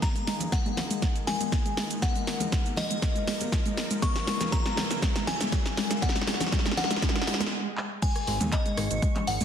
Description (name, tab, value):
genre	progressive house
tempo	120 BPM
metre	4/4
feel	straight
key	G# minor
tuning	A4 = 438 Hz
part	glassy synth bell	melody	0.0-9.4 s	D#5 to C#6	-34 LUFS	left 2 dB	chorus, tape echo
part	warm analog pad	sustained chords	0.0-9.4 s	B2 to A#4	-40 LUFS	left 1 dB	chorus, sidechain pumping
part	electronic kick drum	drums	0.0-9.1 s	none	-27 LUFS	equal	overdrive, studio reverb
part	house drum kit	drums	0.0-9.4 s	crash cymbal, handclaps, hi-hat, rim click, shaker, snare drum	-31 LUFS	equal	studio reverb
part	congas	percussion	0.0-9.4 s	none	-38 LUFS	left 3 dB	sidechain pumping on perc
part	riser	sound effects	0.1-7.5 s	none	-39 LUFS	right 2 dB	none
part	soft round pluck	arpeggios	0.2-9.4 s	G#3	-33 LUFS	equal	lush chorus, sidechain pumping, ping-pong delay
part	twinkling granular texture	texture	8.7-9.4 s	C#6	-40 LUFS	right 6 dB	built-in reverb, sidechain pumping
part	fat analog bass	bass	8.3-9.4 s	G#1 to D#2	-30 LUFS	equal	sidechain pumping
room	moderate digital room reverb, RT60 0.9 s, digital ambience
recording	dense, heavily limited modern master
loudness	-25 LUFS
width	side -9 dB against mid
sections	0.0-8.0 A section; 8.0-9.4 B section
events	build-up 0.0-8.0; drum fill 0.0-7.5, 7.8; filter sweep on synth pluck 0.0-8.0; riser 0.1-7.5; stop 7.5-8.0; drop 8.0-9.4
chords	0.0 D#sus4; 4.0 A#dim; 8.0 G#madd9